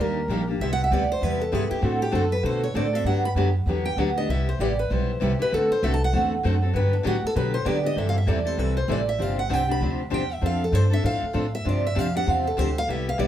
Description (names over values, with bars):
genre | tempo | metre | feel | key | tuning
acoustic string swing (jazz manouche) | 195 BPM | 4/4 | swing 60% on 8ths | G major, C major from 8.0 s | A4 = 440 Hz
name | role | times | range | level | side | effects
picked steel-string acoustic guitar | melody | 0.0-13.3 s | D4 to B5 | -26 LUFS | right 2 dB | none
picked steel-string acoustic guitar | accompaniment | 0.0-13.3 s | C3 to A4 | -28 LUFS | left 5 dB | none
picked steel-string acoustic guitar | accompaniment | 0.0-13.3 s | C3 to A4 | -31 LUFS | right 4 dB | none
upright bass | bass | 0.0-13.3 s | G1 to D3 | -25 LUFS | equal | none
room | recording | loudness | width
moderate studio reverb, RT60 0.5 s | heard from further back in the room | -21 LUFS | side -11 dB against mid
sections
0.0-8.0 A section; 8.0-13.3 A section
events
steel-string acoustic guitar solo 0.0-13.3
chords
0.0 Ebmaj7; 0.6 Cmaj7; 1.8 D7; 3.1 Gmaj7; 4.3 Cmaj7; 5.5 D7; 6.7 Gmaj7; 8.0 C6; 9.2 G7sus4; 10.4 Dm7/F; 11.7 G7sus4